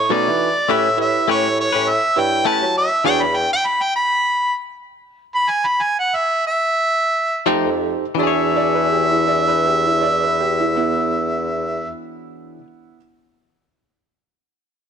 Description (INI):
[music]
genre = blues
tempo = 82-102 BPM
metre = 4/4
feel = swing 54% on 16ths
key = E mixolydian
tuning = A4 = 438 Hz
[part]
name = clear harmonica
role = melody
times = 0.0-11.9 s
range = C#5 to B5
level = -18 LUFS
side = right 1 dB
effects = overdrive
[part]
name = warm bassoon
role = bass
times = 0.0-3.5, 7.5-11.9 s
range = E2 to F#3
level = -24 LUFS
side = left 2 dB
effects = none
[part]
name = bell-like tine electric piano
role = accompaniment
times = 0.1-3.2, 7.5-12.6 s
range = D4 to C#5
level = -25 LUFS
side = right 11 dB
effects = fast stereo tremolo
[part]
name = direct-recorded clean electric guitar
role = stabs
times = 0.1-3.2, 7.5-12.7 s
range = B2 to C#5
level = -23 LUFS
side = left 14 dB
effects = none
[part]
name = warm upright piano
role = second line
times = 8.5-13.0 s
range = B3 to D5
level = -25 LUFS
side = right 7 dB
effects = none
[sound]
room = moderate echo chamber reverb, RT60 2.0 s, studio ambience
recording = 1960s-style stereo with parts hard left and right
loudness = -16 LUFS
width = side -7 dB against mid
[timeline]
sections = 0.0-8.2 A section; 8.2-11.1 B section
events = slowing down 3.1-8.2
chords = 0.0 B9; 0.7 A9; 3.1 E13; 7.5 F9; 8.2 E13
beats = 0.11 | 0.70 1.28 1.87 2.46 | 3.05 3.64 4.24 4.85 | 5.47 6.11 6.77 7.46 | 8.18 8.92 9.65 10.39